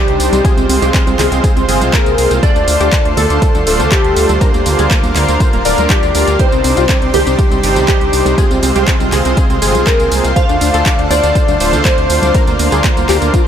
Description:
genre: progressive house.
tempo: 121 BPM.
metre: 4/4.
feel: straight.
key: unclear.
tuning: A4 = 440 Hz.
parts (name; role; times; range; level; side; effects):
soft octave-layered synth lead; melody; 0.0-12.7 s; G4 to F5; -19 LUFS; left 2 dB; chorus, digital delay.
glassy wavetable pluck; second line; 0.0-12.7 s; G4 to F5; -24 LUFS; equal; none.
lush unison pad; sustained chords; 0.0-13.5 s; Ab3 to C6; -21 LUFS; equal; chorus, sidechain pumping.
tight sequenced synth; arpeggios; 0.0-13.4 s; Bb3 to D5; -18 LUFS; equal; chorus, sidechain pumping, tape echo.
soft supersaw; stabs; 0.0-13.5 s; C3 to C5; -18 LUFS; right 2 dB; vintage 12-bit sampler grit, sidechain pumping, tape echo.
round analog bass; bass; 0.1-13.3 s; D1 to D2; -17 LUFS; equal; sidechain pumping.
deep house drum kit; drums; 0.1-13.4 s; handclaps, hi-hat, tambourine; -20 LUFS; equal; overdrive, studio reverb.
congas; percussion; 0.3-13.2 s; none; -25 LUFS; right 3 dB; sidechain pumping on perc.
electronic kick drum; drums; 0.4-13.4 s; none; -13 LUFS; equal; overdrive, studio reverb.
room: digital ambience.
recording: none.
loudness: -9 LUFS.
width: side -9 dB against mid.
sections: 0.0-13.5 A section.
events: none.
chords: 0.4 Fm/C; 2.4 Dm7; 4.4 Bbadd9/D; 6.4 Cmadd9; 8.4 Fm/C; 10.4 Dm7; 12.3 Bbadd9/D.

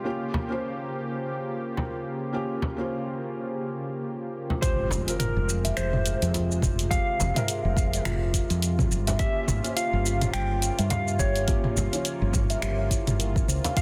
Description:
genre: organic downtempo.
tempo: 105 BPM.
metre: 4/4.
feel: swing 58% on 16ths.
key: unclear.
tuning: A4 = 440 Hz.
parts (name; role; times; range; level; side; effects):
felt-muted upright piano; accompaniment; 0.0-13.8 s; F3 to Db5; -37 LUFS; equal; sidechain pumping, tape echo.
warm analog pad; sustained chords; 0.0-13.8 s; C3 to G4; -38 LUFS; equal; chorus, tremolo, sidechain pumping.
downlifter and impact; sound effects; 0.0-0.1, 4.6-6.9 s; none; -38 LUFS; equal; none.
frame drum; percussion; 0.3-13.7 s; none; -34 LUFS; equal; none.
clean lap steel guitar; melody; 4.6-13.8 s; Bb4 to G5; -34 LUFS; equal; digital delay.
steel tongue drum; arpeggios; 4.6-13.7 s; E4 to F5; -36 LUFS; equal; tape echo.
deep house drum kit; drums; 4.6-13.8 s; finger snaps, hi-hat, shaker, toms; -32 LUFS; equal; soft clipping on snare.
electronic kick drum; drums; 4.6-13.8 s; none; -29 LUFS; equal; none.
woody fretless electric bass; bass; 4.9-13.6 s; F1 to G2; -29 LUFS; equal; sidechain pumping.
room: light reverb, digital ambience.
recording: dense, heavily limited modern master.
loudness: -27 LUFS.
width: mono.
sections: 0.0-4.6 A section; 4.6-13.8 B section.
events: impact 4.6-6.9.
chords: 0.1 Gm7b5; 4.6 Fmadd9; 9.2 Gm7b5.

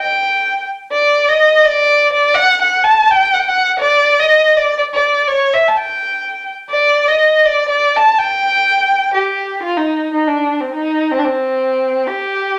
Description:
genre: mexican folk.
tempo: 124 BPM.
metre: 3/4.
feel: swing 55% on 8ths.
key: unclear.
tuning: A4 = 439 Hz.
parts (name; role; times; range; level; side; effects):
dark violin; solo; 0.0-12.6 s; C4 to A5; -14 LUFS; equal; none.
room: wet studio reverb, RT60 0.6 s.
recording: none.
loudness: -14 LUFS.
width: mono.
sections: 0.0-9.6 A section; 9.6-12.6 B section.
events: none.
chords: none.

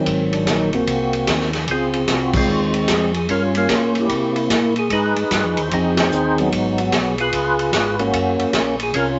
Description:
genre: soul jazz organ trio.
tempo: 149 BPM.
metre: 4/4.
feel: swing 65% on 8ths.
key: Ab major.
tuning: A4 = 440 Hz.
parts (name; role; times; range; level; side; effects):
percussive tonewheel organ; melody; 0.0-9.2 s; Eb3 to C5; -21 LUFS; equal; slow rotary speaker, chorus vibrato.
tonewheel organ; bass; 0.1-9.2 s; Gb1 to C3; -26 LUFS; equal; chorus vibrato, slow rotary speaker.
swinging big-band drum kit; drums; 0.1-9.1 s; crash cymbal, hi-hat, kick drum, ride cymbal, snare drum; -25 LUFS; equal; none.
room: moderate studio reverb, RT60 0.6 s.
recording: nothing above 7.9 kHz.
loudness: -19 LUFS.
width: mono.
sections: 0.0-9.2 A section.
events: band accent 2.3, 5.9.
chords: 0.1 Ab9; 1.7 Dbmaj7; 3.3 Gm7b5; 4.1 C7; 4.9 Fm7; 6.5 Abm7; 7.3 Db7; 8.1 Gbmaj7.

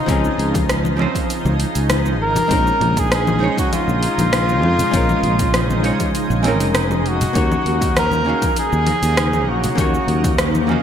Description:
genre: sunset chillout.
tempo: 99 BPM.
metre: 4/4.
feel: straight.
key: Eb dorian.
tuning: A4 = 439 Hz.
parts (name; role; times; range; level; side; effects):
trumpet with bucket mute; melody; 0.0-10.3 s; Eb4 to Bb4; -21 LUFS; equal; digital delay.
archtop guitar, miked and amplified; accompaniment; 0.0-10.8 s; F3 to F5; -24 LUFS; moving between left 7 dB and right 5 dB; auto-pan, digital delay.
shimmering ambient pad; sustained chords; 0.0-10.8 s; Db3 to Eb4; -23 LUFS; equal; chorus, built-in reverb.
sustaining fretless electric bass; bass; 0.1-10.7 s; F1 to F2; -20 LUFS; equal; tube saturation.
deep house drum kit; drums; 0.1-10.8 s; congas, hi-hat, rim click, shaker; -23 LUFS; left 1 dB; overdrive, gated reverb.
electronic kick drum; drums; 0.1-10.4 s; none; -22 LUFS; equal; overdrive.
congas; percussion; 0.8-10.7 s; none; -28 LUFS; left 2 dB; none.
room: moderate lush hall reverb, RT60 1.8 s.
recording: bright 1980s-style digital production.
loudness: -15 LUFS.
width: side -9 dB against mid.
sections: 0.0-10.8 A section.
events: none.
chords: 0.0 Dbmaj9; 2.5 Bbm11; 7.4 Ebm7.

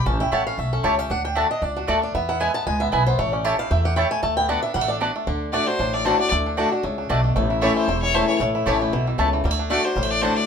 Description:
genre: bluegrass.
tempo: 230 BPM.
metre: 4/4.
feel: swing 54% on 8ths.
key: D major.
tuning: A4 = 442 Hz.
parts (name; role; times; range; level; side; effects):
bluegrass banjo; melody; 0.0-10.5 s; E3 to G4; -26 LUFS; right 1 dB; none.
picked swing-style acoustic guitar; accompaniment; 0.0-10.5 s; E2 to A5; -25 LUFS; left 2 dB; none.
upright bass; bass; 0.0-10.3 s; E1 to E2; -25 LUFS; equal; none.
mandolin; stabs; 0.3-10.3 s; A3 to A5; -23 LUFS; equal; none.
clear fiddle; melody; 5.5-10.5 s; C5 to D5; -24 LUFS; left 2 dB; none.
room: moderate studio reverb, RT60 0.6 s.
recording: minimal, uncompressed stereo recording.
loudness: -19 LUFS.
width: side -7 dB against mid.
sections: 0.0-5.3 A section; 5.3-10.5 A section.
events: steel-string acoustic guitar solo 0.0-5.3; fiddle solo 5.3-10.5.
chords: 0.1 A; 1.1 D; 2.1 E; 3.2 A; 4.2 D6; 5.3 D; 7.4 A; 9.4 D.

